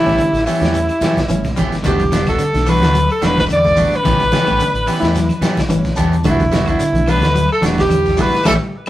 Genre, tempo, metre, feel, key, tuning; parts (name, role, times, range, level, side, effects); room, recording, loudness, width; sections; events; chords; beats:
afrobeat; 109 BPM; 4/4; swing 54% on 16ths; E dorian; A4 = 441 Hz
bright alto saxophone; melody; 0.0-8.5 s; E4 to D5; -17 LUFS; equal; tape echo
brilliant trumpet; second line; 0.0-8.5 s; E4 to D5; -26 LUFS; right 2 dB
reed electric piano; accompaniment; 0.0-8.6 s; E3 to A5; -22 LUFS; equal; fast tremolo
electric guitar at the edge of break-up; arpeggios; 0.0-8.9 s; C#3 to A3; -23 LUFS; left 2 dB
electric guitar at the edge of break-up; stabs; 0.0-8.6 s; E3 to G4; -22 LUFS; right 1 dB
deep dub fingered electric bass; bass; 0.1-8.6 s; E1 to F#2; -20 LUFS; equal
crunchy breakbeat drum kit; drums; 0.1-8.6 s; hi-hat, kick drum, snare drum; -21 LUFS; equal
claves; percussion; 0.1-8.9 s; -36 LUFS; left 1 dB
shekere; percussion; 0.1-8.9 s; -34 LUFS; left 1 dB
congas; percussion; 0.6-8.6 s; -23 LUFS; right 1 dB
moderate studio reverb, RT60 0.5 s; rough rehearsal-room recording; -13 LUFS; side -14 dB against mid
0.0-8.9 A section
reed electric piano fill 5.4-6.2; band accent 8.5-8.9
0.0 A9; 1.8 Em9; 4.0 A9; 6.2 Em9
0.18 0.73 1.29 | 1.84 2.39 2.94 3.49 | 4.04 4.59 5.14 5.70 | 6.25 6.80 7.35 7.90 | 8.46